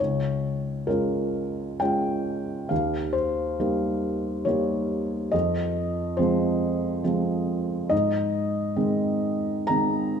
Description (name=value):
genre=neoclassical minimalist piano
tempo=68 BPM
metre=3/4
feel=rubato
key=Ab major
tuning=A4 = 440 Hz
part: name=felt-muted upright piano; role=solo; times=0.0-10.2 s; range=Db2 to Bb5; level=-23 LUFS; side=equal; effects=none
room=moderate scoring stage reverb, RT60 1.7 s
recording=minimal, uncompressed stereo recording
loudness=-23 LUFS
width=side -7 dB against mid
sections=0.0-10.2 A section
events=none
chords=0.0 Db; 2.7 Eb; 5.3 Fm; 7.9 Ab